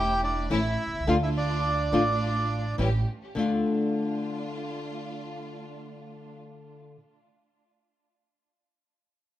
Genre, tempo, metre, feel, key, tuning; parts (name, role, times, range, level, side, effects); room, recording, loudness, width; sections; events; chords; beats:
tango; 105 BPM; 4/4; rubato; D harmonic minor; A4 = 439 Hz
bandoneon; melody; 0.0-2.8 s; D4 to G5; -28 LUFS; right 1 dB; plate reverb
warm symphonic string section; stabs; 0.0-6.4 s; A3 to G4; -36 LUFS; right 2 dB; tape echo
upright bass; bass; 0.0-3.6 s; E1 to D2; -29 LUFS; right 1 dB
nylon-string guitar; accompaniment; 0.5-7.0 s; D3 to F4; -28 LUFS; left 2 dB
moderate club reverb, RT60 0.8 s; -25 LUFS; side -13 dB against mid
0.0-3.4 A section; 3.4-5.6 B section
0.0 A; 1.1 Dm; 2.8 A7; 3.4 Dm
0.50 | 1.07 1.64 2.21 2.79 | 3.36 3.93 4.49 5.06